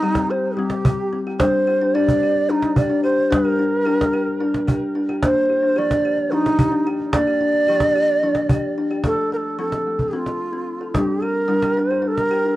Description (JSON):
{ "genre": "world meditative, meditative tuned percussion", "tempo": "220 BPM (eighths)", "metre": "7/8", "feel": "straight", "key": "unclear", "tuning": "A4 = 440 Hz", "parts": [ { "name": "breathy bright low Native American-style wooden flute", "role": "melody", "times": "0.0-12.6 s", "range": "Eb4 to D5", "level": "-20 LUFS", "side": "right 1 dB", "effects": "cassette tape, plate reverb, tape echo" }, { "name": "kalimba", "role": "arpeggios", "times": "0.0-12.6 s", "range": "F3 to A4", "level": "-21 LUFS", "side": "left 2 dB", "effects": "cassette tape" }, { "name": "cajon", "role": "percussion", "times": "0.1-12.3 s", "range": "none", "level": "-21 LUFS", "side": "right 1 dB", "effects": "none" } ], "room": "wet booth ambience, RT60 0.2 s", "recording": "home recording on cassette", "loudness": "-17 LUFS", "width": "side -16 dB against mid", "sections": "0.0-9.0 A section; 9.0-12.6 B section", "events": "none", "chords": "0.0 Cm; 1.4 Gm; 5.2 Bb; 9.0 F; 11.0 Gm", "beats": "0.03 0.30 0.58 0.85 1.13 | 1.40 1.68 1.95 2.22 2.50 2.77 3.04 | 3.32 3.59 3.86 4.14 4.41 4.68 4.96 | 5.23 5.50 5.77 6.04 6.32 6.59 6.86 | 7.13 7.41 7.68 7.95 8.22 8.50 8.77 | 9.04 9.31 9.59 9.86 10.13 10.40 10.68 | 10.95 11.22 11.50 11.77 12.04 12.32" }